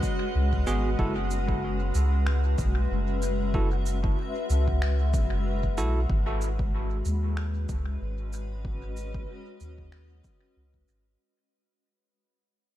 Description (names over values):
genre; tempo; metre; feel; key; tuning
ambient dub; 94 BPM; 4/4; swing 56% on 16ths; unclear; A4 = 439 Hz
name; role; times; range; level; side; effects
granular cloud pad; sustained chords; 0.0-11.2 s; G#3 to E5; -33 LUFS; left 3 dB; built-in reverb
electronic cabasa and finger snaps; drums; 0.0-11.0 s; none; -41 LUFS; right 1 dB; dub echo
electronic kick drum; drums; 0.0-10.9 s; none; -30 LUFS; equal; none
bubbling stepped-filter texture; texture; 0.0-6.1 s; F#5; -41 LUFS; right 7 dB; chorus, built-in reverb
soft dub sub bass; bass; 0.3-11.2 s; F#1 to D#2; -26 LUFS; equal; none
bell-like tine electric piano; stabs; 0.7-6.0 s; B3 to A4; -36 LUFS; right 2 dB; dub echo
room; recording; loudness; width
little or no reverb; vinyl crackle; -25 LUFS; side -13 dB against mid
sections
0.0-6.1 A section; 6.1-11.2 B section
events
fade-out 6.1-11.2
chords
0.0 G#m7; 1.0 F#m7; 6.1 G#m7